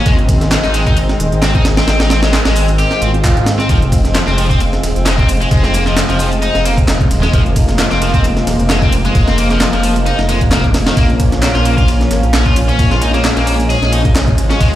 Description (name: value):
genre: breakbeat, breaks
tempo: 132 BPM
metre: 4/4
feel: swing 55% on 16ths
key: F minor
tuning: A4 = 441 Hz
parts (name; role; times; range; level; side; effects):
- lush unison pad; sustained chords; 0.0-14.8 s; Eb3 to Db4; -19 LUFS; equal; chorus, vintage 12-bit sampler grit, sidechain pumping
- high-gain distorted guitar; riff; 0.0-14.7 s; Eb3 to Ab4; -18 LUFS; left 1 dB; distortion, digital delay
- dark detuned saw bass; bass; 0.1-14.8 s; Eb1 to Ab2; -15 LUFS; equal; none
- breakbeat sampler-style drum kit; drums; 0.1-14.7 s; hi-hat, kick drum, ride cymbal, snare drum; -15 LUFS; equal; small room ambience
- garage drum kit; drums; 0.1-14.8 s; handclaps, hi-hat, ride cymbal; -24 LUFS; equal; small room ambience
- swell; sound effects; 3.0-3.7 s; none; -22 LUFS; right 2 dB; none
room: light reverb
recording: played on a big sound system in a bare room, large studio reverb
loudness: -10 LUFS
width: side -13 dB against mid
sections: 0.0-14.8 A section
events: swell 3.0-3.7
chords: 0.1 Ab; 3.7 Fm; 11.0 Bbm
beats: | 0.06 0.52 0.97 1.43 | 1.88 2.33 2.79 3.24 | 3.70 4.15 4.61 5.06 | 5.52 5.97 6.43 6.88 | 7.33 7.79 8.24 8.70 | 9.15 9.61 10.06 10.52 | 10.97 11.43 11.88 12.34 | 12.79 13.24 13.70 14.15 | 14.61